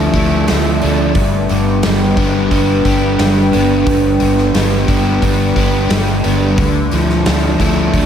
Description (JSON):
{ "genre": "rock, shoegaze and dream pop", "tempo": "88 BPM", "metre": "4/4", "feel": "straight", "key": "unclear", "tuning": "A4 = 437 Hz", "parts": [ { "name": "dark analog pad", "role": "sustained chords", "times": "0.0-8.1 s", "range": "D4 to A5", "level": "-19 LUFS", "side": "right 1 dB", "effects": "chorus" }, { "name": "crunchy overdriven guitar", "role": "riff", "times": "0.0-8.1 s", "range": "G2 to E4", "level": "-18 LUFS", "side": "left 8 dB", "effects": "analog chorus" }, { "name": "overdriven semi-hollow guitar", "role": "riff", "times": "0.0-8.1 s", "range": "G2 to D4", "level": "-18 LUFS", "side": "right 6 dB", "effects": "reverse reverb" }, { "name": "vintage muted fingered electric bass", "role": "bass", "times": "0.0-8.1 s", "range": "G1 to D2", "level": "-17 LUFS", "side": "equal", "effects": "none" }, { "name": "huge arena drum kit", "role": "drums", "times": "0.1-8.1 s", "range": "hi-hat, kick drum, snare drum", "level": "-19 LUFS", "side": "equal", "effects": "none" } ], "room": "wet lush hall reverb, RT60 2.1 s", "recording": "dreamy mix soaked in reverb", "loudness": "-11 LUFS", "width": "side -8 dB against mid", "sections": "0.0-8.1 A section", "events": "none", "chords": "0.0 Dmadd9; 1.2 G; 6.6 Dmadd9" }